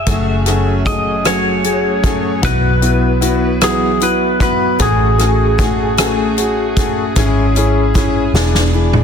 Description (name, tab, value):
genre	six-eight pop ballad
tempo	51 BPM (dotted quarters)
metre	6/8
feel	straight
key	unclear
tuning	A4 = 440 Hz
part	clean lap steel guitar	melody	0.0-8.7 s	G#4 to E5	-19 LUFS	right 1 dB	digital delay
part	vintage muted fingered electric bass	bass	0.0-9.0 s	E1 to B1	-17 LUFS	equal	none
part	warm concert grand piano	accompaniment	0.1-9.0 s	A3 to G#4	-18 LUFS	left 6 dB	none
part	pipe organ, foundations	sustained chords	0.1-9.0 s	E3 to G#4	-22 LUFS	equal	none
part	picked steel-string acoustic guitar	arpeggios	0.1-9.0 s	G#2 to B4	-24 LUFS	right 6 dB	digital delay
part	natural country drum kit	drums	0.1-9.0 s	hi-hat, kick drum, rim click, snare drum, toms	-18 LUFS	equal	soft clipping on snare
room	light reverb, small room reverb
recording	dense, heavily limited modern master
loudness	-12 LUFS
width	side -7 dB against mid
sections	0.0-9.0 A section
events	drum fill 8.3-9.0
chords	0.1 F#madd9; 2.4 Bsus4; 4.8 F#madd9/A; 7.2 C#m/G#; 8.3 E7